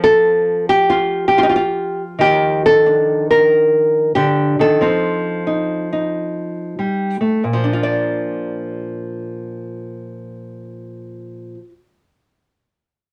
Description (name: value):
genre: solo jazz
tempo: 92 BPM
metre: 4/4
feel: swing 67% on 8ths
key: Bb major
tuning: A4 = 440 Hz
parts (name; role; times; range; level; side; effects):
- nylon-string guitar; solo; 0.0-11.7 s; Bb2 to D5; -17 LUFS; equal; none
room: wet studio ambience, RT60 0.5 s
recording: none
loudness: -16 LUFS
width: mono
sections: 0.0-7.4 A section; 7.4-10.0 B section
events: none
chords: 0.0 F; 2.2 Ebsus2; 4.8 F7; 7.4 Bb